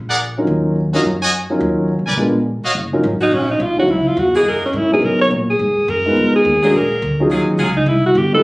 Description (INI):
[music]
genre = jazz, big band swing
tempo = 211 BPM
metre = 4/4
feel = swing 62% on 8ths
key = Eb minor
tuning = A4 = 437 Hz
[part]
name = upright bass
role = bass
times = 0.0-8.4 s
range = Gb1 to B2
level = -22 LUFS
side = equal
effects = none
[part]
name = brilliant trumpet section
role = stabs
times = 0.1-2.7 s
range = Gb4 to Ab5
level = -18 LUFS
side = equal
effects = none
[part]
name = dark concert grand piano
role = accompaniment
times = 0.4-8.4 s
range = Gb3 to Db5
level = -17 LUFS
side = equal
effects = none
[part]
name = warm alto saxophone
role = melody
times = 3.2-8.4 s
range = Db4 to C#5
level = -15 LUFS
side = equal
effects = plate reverb
[part]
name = bright saxophone section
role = sustained chords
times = 3.2-7.7 s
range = Fb3 to Ab4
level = -20 LUFS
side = equal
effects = none
[sound]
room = moderate club reverb, RT60 0.6 s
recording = recorded on a phone in the room, club reverb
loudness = -14 LUFS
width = side -22 dB against mid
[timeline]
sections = 0.0-2.8 A section; 2.8-8.4 B section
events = alto saxophone solo 2.8-8.4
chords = 0.5 Ebm9; 2.2 Bb7b9; 2.8 Ebm9; 3.9 Dbmadd9; 4.5 Gb13; 5.0 Bmaj9; 6.2 Fm7b5; 6.7 Bb7alt; 7.3 Ebm11; 7.9 C5